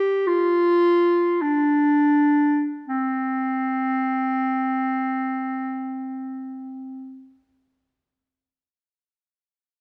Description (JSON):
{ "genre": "classical, free, expressive piece for unaccompanied clarinet", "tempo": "free time", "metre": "none", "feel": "none", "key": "unclear", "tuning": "A4 = 440 Hz", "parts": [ { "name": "clear clarinet", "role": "solo", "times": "0.0-7.3 s", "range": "C4 to G4", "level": "-22 LUFS", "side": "equal", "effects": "none" } ], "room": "wet recital hall reverb, RT60 1.3 s", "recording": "none", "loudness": "-22 LUFS", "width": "mono", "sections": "0.0-2.9 A section; 2.9-7.7 B section", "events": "slowing down 0.0-2.9", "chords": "none" }